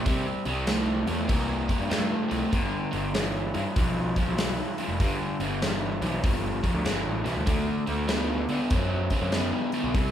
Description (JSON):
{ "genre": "blues rock power trio and southern rock", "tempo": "97 BPM", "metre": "4/4", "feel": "swing 65% on 8ths", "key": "G mixolydian", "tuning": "A4 = 439 Hz", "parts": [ { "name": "crunchy overdriven guitar", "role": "riff", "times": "0.0-10.1 s", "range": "G2 to C4", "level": "-28 LUFS", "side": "equal", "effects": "none" }, { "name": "fuzz picked electric bass", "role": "bass", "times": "0.0-10.1 s", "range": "F1 to D3", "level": "-30 LUFS", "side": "equal", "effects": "overdrive" }, { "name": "big rock drum kit", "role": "drums", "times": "0.1-10.1 s", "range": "hi-hat, kick drum, snare drum", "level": "-29 LUFS", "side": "equal", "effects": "none" } ], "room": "light reverb", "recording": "band playing live in one room", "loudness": "-24 LUFS", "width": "side -10 dB against mid", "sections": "0.0-10.1 A section", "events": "none", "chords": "0.0 C7(no3); 2.5 G7; 7.5 D7", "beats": "| 0.06 0.68 1.29 1.91 | 2.53 3.15 3.76 4.38 | 5.00 5.62 6.23 6.85 | 7.47 8.09 8.71 9.33 | 9.95" }